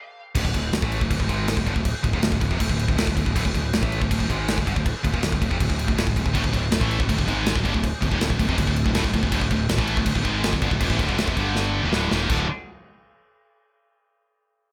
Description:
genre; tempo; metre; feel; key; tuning
heavy metal; 161 BPM; 4/4; straight; unclear; A4 = 441 Hz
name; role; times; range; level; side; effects
scooped high-gain guitar; riff; 0.3-12.4 s; D2 to A3; -28 LUFS; equal; distortion
growling picked electric bass; bass; 0.4-12.5 s; D1 to A1; -29 LUFS; equal; overdrive
modern studio drum kit; drums; 0.4-12.4 s; crash cymbal, kick drum, snare drum; -27 LUFS; equal; none
scooped high-gain guitar; riff; 6.3-12.5 s; D2 to A3; -29 LUFS; equal; distortion
room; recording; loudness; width
little or no reverb; none; -23 LUFS; mono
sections
0.3-12.3 A section; 12.3-13.8 B section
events
stop 0.0-0.3; drum fill 11.6-12.3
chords
0.3 D5; 11.4 G5; 11.8 D5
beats
| 0.35 0.72 1.10 1.48 | 1.85 2.23 2.60 2.97 | 3.35 3.72 4.10 4.47 | 4.85 5.22 5.59 5.97 | 6.34 6.71 7.09 7.46 | 7.83 8.20 8.58 8.95 | 9.32 9.69 10.06 10.44 | 10.81 11.18 11.55 11.92 | 12.29

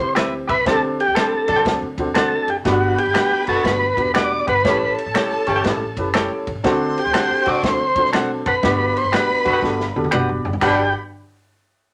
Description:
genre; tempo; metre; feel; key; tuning
uptempo 1960s-style soul; 120 BPM; 4/4; swing 66% on 8ths; G major; A4 = 443 Hz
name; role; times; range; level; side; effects
tonewheel organ; melody; 0.0-10.9 s; F#4 to D5; -21 LUFS; equal; slow rotary speaker
dark baby grand piano; accompaniment; 0.0-10.9 s; B3 to D5; -26 LUFS; equal; none
upright bass; bass; 0.0-10.9 s; E1 to D3; -32 LUFS; equal; none
direct-recorded clean electric guitar; stabs; 0.2-10.8 s; G4 to G5; -26 LUFS; equal; none
warm soul drum kit; drums; 0.2-10.8 s; crash cymbal, kick drum, ride cymbal, snare drum, toms; -27 LUFS; equal; none
finger snap; percussion; 0.2-10.9 s; none; -28 LUFS; equal; none
warm horn section; second line; 0.7-10.9 s; B2 to A4; -25 LUFS; equal; none
warm studio violin section; second line; 2.6-10.9 s; G4 to C6; -31 LUFS; equal; none
room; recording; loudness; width
wet club reverb, RT60 0.6 s; none; -19 LUFS; mono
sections
0.0-10.6 A section; 10.6-11.9 B section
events
drum fill 9.6-10.6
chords
0.0 Cmaj7; 0.7 D7sus4; 1.7 D7; 2.7 Gmaj7; 4.6 A7; 6.6 D7; 8.6 Gmaj7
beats
0.16 | 0.66 1.16 1.65 2.15 | 2.65 3.15 3.65 4.15 | 4.64 5.14 5.64 6.14 | 6.64 7.14 7.64 8.13 | 8.63 9.13 9.63 10.12 | 10.62

